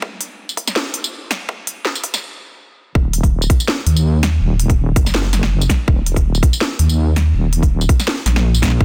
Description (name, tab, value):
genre	half-time drum and bass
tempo	164 BPM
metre	4/4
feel	swing 55% on 16ths, half-time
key	Eb minor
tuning	A4 = 439 Hz
part	electronic kick drum	drums	0.0-8.8 s	none	-17 LUFS	equal	high-pass filter on kick, studio reverb
part	drum and bass drum kit	drums	0.2-8.7 s	hi-hat, snare drum, tambourine	-23 LUFS	equal	studio reverb
part	deep soft wobble bass	bass	3.0-8.8 s	Eb1 to Eb2	-17 LUFS	equal	chorus
room	little or no reverb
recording	dense, heavily limited modern master, high-pass filter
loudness	-17 LUFS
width	mono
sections	0.0-3.0 A section; 3.0-8.8 B section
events	build-up 0.0-3.0; stop 2.2-3.0; drop 3.0-8.8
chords	none